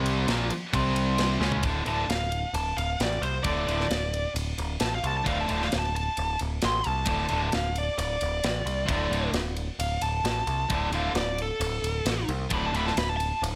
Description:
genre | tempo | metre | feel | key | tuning
hard rock | 132 BPM | 4/4 | straight | unclear | A4 = 440 Hz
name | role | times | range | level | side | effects
distorted electric guitar | riff | 0.0-12.9 s | D2 to C#4 | -33 LUFS | equal | overdrive
overdriven electric guitar | riff | 0.0-1.6 s | Bb2 to C#4 | -35 LUFS | equal | none
tight distorted guitar | riff | 0.0-12.9 s | D2 to C#4 | -35 LUFS | equal | distortion
growling picked electric bass | bass | 0.0-13.6 s | D1 to C#2 | -33 LUFS | equal | overdrive
tight metal drum kit | drums | 0.1-13.5 s | kick drum, ride cymbal, snare drum, toms | -34 LUFS | equal | none
bluesy overdriven lead guitar | melody | 1.9-13.4 s | A4 to C6 | -32 LUFS | equal | distortion
room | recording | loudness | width
moderate large studio reverb, RT60 0.8 s, small room ambience | none | -27 LUFS | mono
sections
0.0-1.6 A section; 1.6-13.6 B section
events
drum fill 1.4; lead electric guitar solo 1.6-13.6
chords
0.3 Gm7; 0.7 C5; 1.4 C#5; 1.6 D5

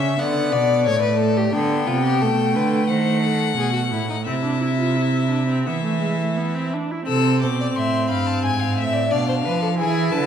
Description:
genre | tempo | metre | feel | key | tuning
classical, baroque-style fugue for string quartet | 88 BPM | 4/4 | straight | A minor | A4 = 439 Hz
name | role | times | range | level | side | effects
clear violin | melody | 0.0-10.3 s | D5 to E6 | -25 LUFS | left 10 dB | none
clear violin | second line | 0.0-10.3 s | D4 to G#5 | -26 LUFS | left 3 dB | none
rich viola | accompaniment | 0.0-10.3 s | G#3 to F4 | -24 LUFS | right 2 dB | none
clear cello | bass | 0.0-10.3 s | G2 to E#3 | -22 LUFS | right 3 dB | none
room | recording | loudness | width
wet recital hall reverb, RT60 1.6 s | dark, warm production | -18 LUFS | side -8 dB against mid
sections
0.0-7.1 A section; 7.1-10.3 B section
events
none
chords
0.2 D; 1.5 Bm7; 2.9 D#dim7; 4.3 Cadd9; 5.7 E; 7.1 Am; 8.4 G#dim7

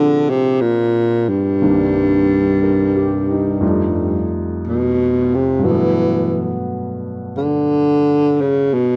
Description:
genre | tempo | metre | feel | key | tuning
jazz ballad | 60 BPM | 4/4 | swing 68% on 8ths | unclear | A4 = 439 Hz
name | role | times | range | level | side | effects
breathy baritone saxophone | melody | 0.0-9.0 s | G2 to Fb3 | -17 LUFS | equal | none
warm concert grand piano | accompaniment | 0.0-9.0 s | C2 to Bb4 | -23 LUFS | equal | none
room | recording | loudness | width
moderate studio reverb, RT60 0.6 s | dry, close 1970s-style studio recording | -17 LUFS | mono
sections
0.0-9.0 A section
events
none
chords
0.0 Ab69; 1.6 Cm7; 3.6 F9; 5.6 Gmaj9

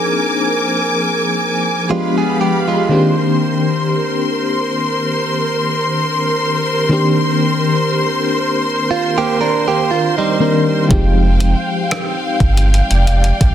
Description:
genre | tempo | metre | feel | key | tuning
contemporary R&B | 60 BPM | 4/4 | swing 54% on 16ths | C minor | A4 = 440 Hz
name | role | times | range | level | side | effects
FM electric piano with tremolo | accompaniment | 0.0-13.5 s | Eb3 to C5 | -17 LUFS | left 2 dB | phaser
warm studio string section | sustained chords | 0.0-13.5 s | Ab3 to D6 | -18 LUFS | equal | none
direct-recorded clean electric guitar | arpeggios | 1.9-10.9 s | G3 to Bb4 | -18 LUFS | right 7 dB | digital delay
sub bass with octave | bass | 10.9-13.5 s | F1 to Ab1 | -13 LUFS | equal | none
clean 12-bit digital drum machine | drums | 10.9-13.5 s | hi-hat, kick drum, rim click | -17 LUFS | equal | overdrive
room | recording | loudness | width
light reverb, digital ambience | dense, heavily limited modern master | -13 LUFS | side -10 dB against mid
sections
0.0-13.5 A section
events
none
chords
0.0 Bb7; 1.9 G7b9; 2.9 Cm7; 10.9 Fm9

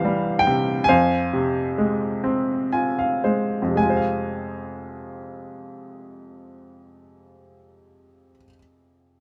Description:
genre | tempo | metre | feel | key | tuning
classical, lyrical solo piano | 54-74 BPM | 3/4 | rubato | F minor | A4 = 442 Hz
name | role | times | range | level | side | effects
bright upright piano | solo | 0.0-9.2 s | C2 to Ab5 | -23 LUFS | equal | none
room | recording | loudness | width
light reverb | close, detailed microphones | -22 LUFS | mono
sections
0.0-3.8 A section; 3.8-7.0 B section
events
slowing down 0.0-3.8; upright piano fill 2.2-3.8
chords
0.0 C; 0.9 Fm

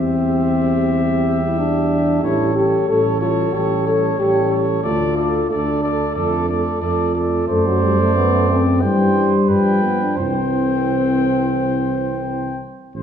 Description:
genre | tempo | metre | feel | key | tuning
classical, brass quintet | 91 BPM | 4/4 | straight | C major | A4 = 441 Hz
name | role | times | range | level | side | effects
warm trumpet | melody | 0.0-13.0 s | C5 to G5 | -25 LUFS | left 6 dB | none
warm flugelhorn | second line | 0.0-12.6 s | G4 to C5 | -25 LUFS | right 6 dB | none
mellow French horn | accompaniment | 0.0-12.6 s | F#3 to A4 | -19 LUFS | left 3 dB | none
mellow trombone | accompaniment | 0.0-12.6 s | E3 to A3 | -26 LUFS | right 5 dB | none
mellow tuba | bass | 0.0-13.0 s | A1 to G2 | -22 LUFS | right 3 dB | none
room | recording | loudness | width
wet recital hall reverb, RT60 1.3 s | heard from further back in the room | -15 LUFS | side -8 dB against mid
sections
0.0-12.9 A section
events
none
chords
0.0 C/E; 2.2 A7; 4.9 Dm; 6.2 Dm/F; 7.5 D7/F#; 8.8 C/G; 9.5 G7; 10.2 C

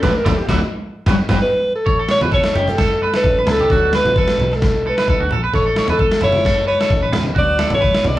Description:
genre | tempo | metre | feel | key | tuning
highlife guitar band | 131 BPM | 4/4 | straight | A mixolydian | A4 = 444 Hz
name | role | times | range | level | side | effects
breathy alto saxophone | melody | 0.0-8.2 s | F#4 to D5 | -17 LUFS | equal | none
nylon-string guitar | accompaniment | 0.0-8.2 s | A2 to F#4 | -26 LUFS | left 3 dB | none
electric guitar at the edge of break-up | arpeggios | 0.0-8.2 s | E4 to D5 | -22 LUFS | right 3 dB | none
fingered electric bass | bass | 0.0-8.2 s | F#1 to E2 | -24 LUFS | equal | none
boom bap sampler-style drum kit | drums | 0.0-8.0 s | kick drum, snare drum | -20 LUFS | equal | none
congas | percussion | 0.0-8.2 s | none | -24 LUFS | right 1 dB | none
room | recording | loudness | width
moderate large studio reverb, RT60 0.9 s | band playing live in one room | -14 LUFS | side -15 dB against mid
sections
0.0-1.9 A section; 1.9-8.2 B section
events
alto saxophone solo 0.0-1.9; band accent 0.0-1.9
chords
0.0 D6; 1.0 Gmaj7; 1.9 A; 3.7 D6; 5.5 A; 7.4 D6

